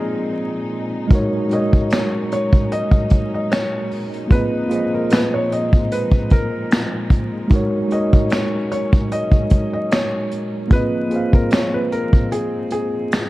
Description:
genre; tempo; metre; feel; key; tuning
lo-fi hip hop; 75 BPM; 4/4; swing 55% on 16ths; unclear; A4 = 440 Hz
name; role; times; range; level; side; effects
felt-muted upright piano; melody; 0.0-13.3 s; G#4 to D#5; -24 LUFS; equal; none
mellow tine electric piano; accompaniment; 0.0-13.3 s; G#3 to E#5; -22 LUFS; right 1 dB; medium stereo tremolo
warm studio string section; sustained chords; 0.0-13.3 s; A#2 to D#4; -30 LUFS; left 1 dB; none
vintage brush drum kit; drums; 1.1-13.3 s; finger snaps, hi-hat, kick drum, snare drum; -16 LUFS; equal; none
room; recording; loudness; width
small room reverb; dark, warm production, vinyl crackle; -16 LUFS; side -18 dB against mid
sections
0.0-13.3 A section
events
break 12.3-13.3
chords
0.0 A#9sus4; 1.1 G#9sus4; 4.3 A#9sus4; 7.5 G#9sus4; 10.7 A#9sus4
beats
0.31 | 1.11 1.91 2.71 3.51 | 4.31 5.11 5.91 6.71 | 7.51 8.31 9.11 9.91 | 10.71 11.51 12.31 13.11

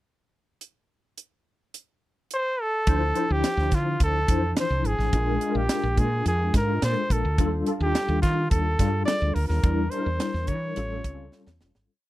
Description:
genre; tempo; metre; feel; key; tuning
polished 1980s jazz-funk pop; 106 BPM; 4/4; straight; unclear; A4 = 440 Hz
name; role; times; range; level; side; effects
crisp fusion drum kit; drums; 0.6-11.9 s; hi-hat, kick drum, snare drum; -25 LUFS; equal; none
warm flugelhorn; melody; 2.3-11.6 s; F4 to D5; -27 LUFS; equal; none
mellow tine electric piano; accompaniment; 2.9-11.9 s; E3 to C5; -29 LUFS; left 2 dB; medium tremolo, ensemble chorus
woody fretless electric bass; bass; 2.9-11.9 s; G#1 to E3; -26 LUFS; equal; none
room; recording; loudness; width
little or no reverb; dry, close 1970s-style studio recording; -22 LUFS; side -16 dB against mid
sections
0.6-2.9 pickup bar; 2.9-11.9 verse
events
fade-out 9.6-11.9; drum fill 11.3-11.9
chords
0.6 N.C.; 2.9 Dm9; 5.1 Bb7; 7.4 Ebmaj9#11; 9.6 Em7b5; 10.8 A7b13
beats
| 0.61 1.18 1.74 2.31 | 2.87 3.43 4.00 4.56 | 5.13 5.69 6.25 6.82 | 7.38 7.94 8.51 9.07 | 9.63 10.20 10.76 11.32

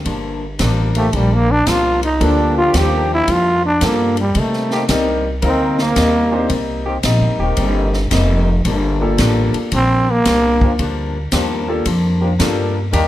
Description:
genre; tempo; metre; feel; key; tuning
jazz, big band swing; 112 BPM; 4/4; swing 67% on 8ths; G minor; A4 = 443 Hz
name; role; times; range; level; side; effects
warm trombone section; sustained chords; 0.0-13.1 s; Eb3 to Bb4; -23 LUFS; left 1 dB; none
upright bass; bass; 0.0-13.1 s; Eb1 to C3; -18 LUFS; equal; none
picked swing-style acoustic guitar; accompaniment; 0.1-13.1 s; G2 to Eb4; -23 LUFS; left 3 dB; none
swinging big-band drum kit; drums; 0.1-13.1 s; hi-hat, kick drum, ride cymbal, snare drum; -23 LUFS; equal; none
growling trombone; melody; 1.0-6.5, 9.8-10.8 s; G3 to G4; -16 LUFS; equal; plate reverb
warm concert grand piano; accompaniment; 2.2-12.7 s; Bb3 to C5; -21 LUFS; left 1 dB; none
room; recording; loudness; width
moderate large studio reverb, RT60 0.8 s; none; -14 LUFS; side -14 dB against mid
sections
0.0-13.1 A section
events
trombone solo 0.0-13.1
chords
0.0 Gm7; 4.4 Cm7; 8.6 Gm7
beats
| 0.06 0.60 1.14 1.67 | 2.21 2.75 3.28 3.82 | 4.36 4.89 5.43 5.97 | 6.50 7.04 7.58 8.11 | 8.65 9.18 9.72 10.26 | 10.79 11.33 11.86 12.40 | 12.93

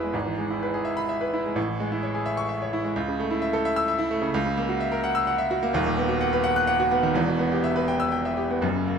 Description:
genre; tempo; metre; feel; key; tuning
classical, virtuoso piano study; 85 BPM (dotted quarters); 6/8; rubato; unclear; A4 = 441 Hz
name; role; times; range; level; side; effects
clear baby grand piano; solo; 0.0-9.0 s; D#1 to F#6; -22 LUFS; equal; none
room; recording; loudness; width
light reverb; minimal, uncompressed stereo recording; -22 LUFS; side -6 dB against mid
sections
0.0-9.0 A section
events
none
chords
0.1 E/G#; 1.6 Amaj7; 3.0 A/C#; 4.3 F#7/C#; 5.7 B/D#; 7.2 Em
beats
| 0.14 0.85 | 1.56 2.26 | 2.96 3.65 | 4.34 5.04 | 5.75 6.45 | 7.16 7.89 | 8.63

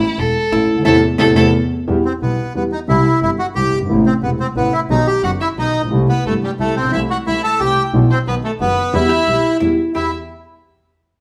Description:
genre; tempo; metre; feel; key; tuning
tango; 179 BPM; 3/4; rubato; E harmonic minor; A4 = 440 Hz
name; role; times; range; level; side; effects
clear violin; second line; 0.0-1.5, 5.2-10.1 s; E4 to A5; -24 LUFS; equal; none
dark concert grand piano; accompaniment; 0.2-10.1 s; E1 to G4; -20 LUFS; equal; none
clear double bass; bass; 0.2-10.1 s; E1 to E2; -24 LUFS; equal; none
archtop guitar, miked and amplified; second line; 0.5-1.5, 9.1-10.1 s; A3 to G4; -21 LUFS; equal; none
bandoneon; melody; 2.1-10.1 s; G3 to A4; -20 LUFS; equal; none
room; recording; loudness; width
wet stone room reverb, RT60 1.1 s; band playing live in one room; -16 LUFS; mono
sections
0.0-1.9 A section; 1.9-10.0 B section; 10.0-11.0 C section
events
violin solo 0.0-1.9; band accent 0.9-1.9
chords
0.0 A5; 0.9 Am/E; 1.5 N.C.; 1.9 Em; 2.9 C; 3.9 Amadd9; 4.9 B; 5.9 C6; 6.9 Am/C; 7.9 Bsus4; 8.3 B; 8.9 Em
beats
0.18 0.52 | 0.85 1.19 1.53 | 1.88 2.22 2.55 | 2.89 3.22 3.56 | 3.89 4.23 4.56 | 4.89 5.23 5.57 | 5.91 6.25 6.59 | 6.93 7.26 7.60 | 7.93 8.26 8.60 | 8.93 9.27 9.61 | 9.95

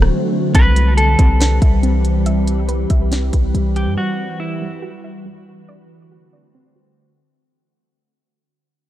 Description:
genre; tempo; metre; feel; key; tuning
hip hop, atmospheric cloud-rap; 140 BPM; 4/4; half-time; C lydian; A4 = 438 Hz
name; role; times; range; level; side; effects
glassy FM pad; sustained chords; 0.0-7.4 s; D3 to B4; -22 LUFS; equal; ensemble chorus, built-in reverb, sidechain pumping
warm 808-style bass; bass; 0.0-4.0 s; D1 to G2; -16 LUFS; equal; none
trap drum kit; drums; 0.0-3.9 s; hi-hat, kick drum, rim click, snare drum; -15 LUFS; equal; vintage 12-bit sampler grit
soft round pluck; arpeggios; 0.5-7.4 s; G3 to E5; -29 LUFS; right 4 dB; chorus, tape echo
clean electric guitar; melody; 0.6-5.2 s; E4 to B4; -22 LUFS; equal; tape echo
room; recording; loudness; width
little or no reverb; none; -13 LUFS; side -14 dB against mid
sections
0.5-7.4 A section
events
break 0.1-0.5; fade-out 0.5-7.4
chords
0.0 D7; 0.5 Cmaj7; 4.0 Emadd9; 5.7 D7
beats
0.12 | 0.54 0.97 1.40 1.83 | 2.26 2.69 3.12 3.54 | 3.97 4.40 4.83 5.26 | 5.69 6.12 6.54 6.97

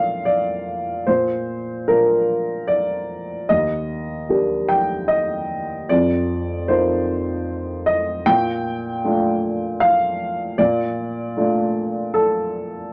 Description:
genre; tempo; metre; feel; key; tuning
neoclassical minimalist piano; 76 BPM; 3/4; rubato; Bb major; A4 = 440 Hz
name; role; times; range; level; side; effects
warm baby grand piano; solo; 0.0-12.9 s; Eb2 to G5; -21 LUFS; equal; none
room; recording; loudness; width
moderate studio reverb, RT60 0.5 s; nothing above 10.3 kHz; -21 LUFS; mono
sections
0.0-12.9 A section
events
none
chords
0.0 Bb; 3.5 Ebmaj7; 5.9 F7sus4; 8.3 Bbmaj7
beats
0.26 | 1.07 1.88 2.69 | 3.49 4.28 5.09 | 5.90 6.70 7.49 | 8.27 9.05 9.81 | 10.59 11.37 12.15

